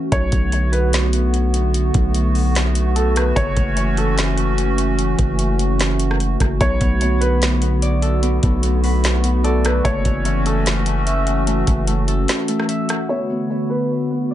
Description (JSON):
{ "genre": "hip hop, atmospheric cloud-rap", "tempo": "148 BPM", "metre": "4/4", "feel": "half-time", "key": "B minor", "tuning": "A4 = 440 Hz", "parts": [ { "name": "hollow soft pad", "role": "sustained chords", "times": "0.0-14.3 s", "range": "D3 to F#4", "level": "-22 LUFS", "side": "equal", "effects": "chorus, sidechain pumping, low-pass filter" }, { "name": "felt-muted upright piano", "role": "melody", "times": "0.1-4.2, 6.6-10.7, 13.1-13.9 s", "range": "A4 to C#5", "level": "-24 LUFS", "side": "equal", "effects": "low-pass filter, ping-pong delay" }, { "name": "long sustained 808-style bass", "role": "bass", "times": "0.1-12.3 s", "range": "F#1 to B1", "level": "-18 LUFS", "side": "equal", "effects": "none" }, { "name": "smooth R&B drum kit", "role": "drums", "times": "0.1-13.0 s", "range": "hi-hat, kick drum, rim click, snare drum", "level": "-22 LUFS", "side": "equal", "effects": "none" }, { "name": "Celtic harp", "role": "arpeggios", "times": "6.6-14.3 s", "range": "A3 to E5", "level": "-25 LUFS", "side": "left 2 dB", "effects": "low-pass filter, ping-pong delay" } ], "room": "light reverb, digital ambience", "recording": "nothing above 10.7 kHz", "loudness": "-16 LUFS", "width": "side -12 dB against mid", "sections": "0.1-13.1 A section; 13.1-14.3 B section", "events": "kick muted 12.3-13.1; filter sweep 13.1-14.3", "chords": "0.1 Bm7; 3.4 F#m7; 6.6 Bm7; 9.8 F#m7; 13.1 Bm7" }